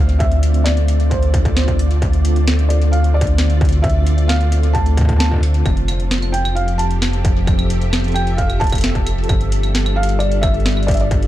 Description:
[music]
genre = IDM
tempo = 132 BPM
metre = 4/4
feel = straight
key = D minor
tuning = A4 = 441 Hz
[part]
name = felt-muted upright piano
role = melody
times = 0.0-11.3 s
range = C5 to A5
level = -24 LUFS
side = equal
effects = ping-pong delay, shimmer reverb
[part]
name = soft string machine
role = sustained chords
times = 0.0-11.3 s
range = D3 to E5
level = -24 LUFS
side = equal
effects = ensemble chorus, shimmer reverb
[part]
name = round analog bass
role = bass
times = 0.0-11.3 s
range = F1 to D2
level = -16 LUFS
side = equal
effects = none
[part]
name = electro analog drum machine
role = drums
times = 0.1-11.3 s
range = claves, hi-hat, snare drum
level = -24 LUFS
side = equal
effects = none
[part]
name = electronic kick drum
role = drums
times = 0.2-11.2 s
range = none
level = -18 LUFS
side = equal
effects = distortion
[sound]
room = little or no reverb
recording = dark, warm production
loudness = -14 LUFS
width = side -14 dB against mid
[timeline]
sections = 0.0-11.3 A section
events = none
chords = 0.0 Dm7; 5.7 Fmaj9; 9.3 G9sus4

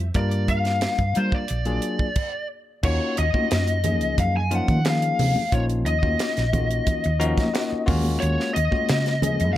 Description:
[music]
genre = electric jazz fusion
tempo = 89 BPM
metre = 4/4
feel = straight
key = Eb minor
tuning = A4 = 442 Hz
[part]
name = bell-like tine electric piano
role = accompaniment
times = 0.0-9.6 s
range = F3 to Bb5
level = -27 LUFS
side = left 3 dB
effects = none
[part]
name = hollow-body short-scale fingered electric bass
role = bass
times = 0.0-9.5 s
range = Bb1 to G3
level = -24 LUFS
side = equal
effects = none
[part]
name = tight funk drum kit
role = drums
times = 0.1-9.6 s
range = crash cymbal, hi-hat, kick drum, snare drum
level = -26 LUFS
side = right 1 dB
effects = none
[part]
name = lead guitar through a small cranked amp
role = melody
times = 0.2-9.6 s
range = C5 to Ab5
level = -26 LUFS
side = left 2 dB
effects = overdrive, slapback echo
[part]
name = congas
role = percussion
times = 3.3-9.4 s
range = none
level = -31 LUFS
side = right 3 dB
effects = none
[sound]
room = small room ambience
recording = none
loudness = -20 LUFS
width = side -13 dB against mid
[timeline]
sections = 0.0-2.8 A section; 2.8-9.6 B section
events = stop 2.2-2.8; tine electric piano fill 6.9-8.2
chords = 0.2 Gm7; 1.5 Bb7b13; 2.8 Ebm9; 7.9 Ab13sus4/Eb

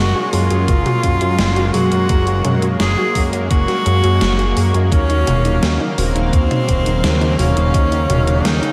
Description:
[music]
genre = synthwave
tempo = 85 BPM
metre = 4/4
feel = straight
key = unclear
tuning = A4 = 441 Hz
[part]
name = clear tenor saxophone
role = melody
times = 0.0-8.7 s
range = C4 to Ab4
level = -22 LUFS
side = equal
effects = analog delay
[part]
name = chorused pulse-width pad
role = sustained chords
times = 0.0-8.7 s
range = Db3 to F5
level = -25 LUFS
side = equal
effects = sidechain pumping
[part]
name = soft round pluck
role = arpeggios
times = 0.0-8.7 s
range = Bb3 to Ab4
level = -28 LUFS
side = equal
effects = none
[part]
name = mellow synth brass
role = stabs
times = 0.0-8.7 s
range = Gb3 to Bb4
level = -30 LUFS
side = equal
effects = none
[part]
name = chorused synth bass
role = bass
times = 0.0-8.6 s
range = Eb1 to Gb2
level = -20 LUFS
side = equal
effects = tube saturation
[part]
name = gated 80s digital drum machine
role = drums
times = 0.3-8.7 s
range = hi-hat, snare drum, toms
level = -24 LUFS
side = equal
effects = gated reverb, gated reverb snare
[part]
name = electronic kick drum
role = drums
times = 0.7-7.9 s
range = none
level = -19 LUFS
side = equal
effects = none
[sound]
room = moderate huge ambient reverb, RT60 8.7 s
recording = dreamy mix soaked in reverb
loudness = -16 LUFS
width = mono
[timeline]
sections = 0.0-8.7 A section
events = none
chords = 0.0 Gbadd9; 4.9 Ebm7

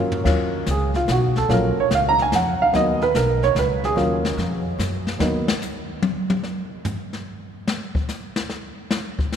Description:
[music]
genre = jazz piano trio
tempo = 146 BPM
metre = 3/4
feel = swing 67% on 8ths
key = Eb minor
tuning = A4 = 440 Hz
[part]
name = warm upright piano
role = melody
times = 0.0-5.5 s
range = Gb3 to Bb5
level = -20 LUFS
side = right 2 dB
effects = none
[part]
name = upright bass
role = bass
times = 0.0-5.5 s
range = Bb1 to Gb2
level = -24 LUFS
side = equal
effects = none
[part]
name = jazz brush drum kit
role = drums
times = 0.1-9.4 s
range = brushed snare drum, crash cymbal, hi-hat, kick drum, snare drum, toms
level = -26 LUFS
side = left 2 dB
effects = none
[sound]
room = wet cathedral reverb, RT60 5.0 s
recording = recorded in a church or concert hall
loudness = -19 LUFS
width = side -8 dB against mid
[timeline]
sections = 0.3-9.4 A section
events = drum fill 0.0; upright piano solo 0.3-9.4; drum solo 5.2-9.4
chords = 0.3 Ebm9; 2.7 Bmaj9; 4.0 Ebm9; 5.2 Ebm; 6.4 N.C.

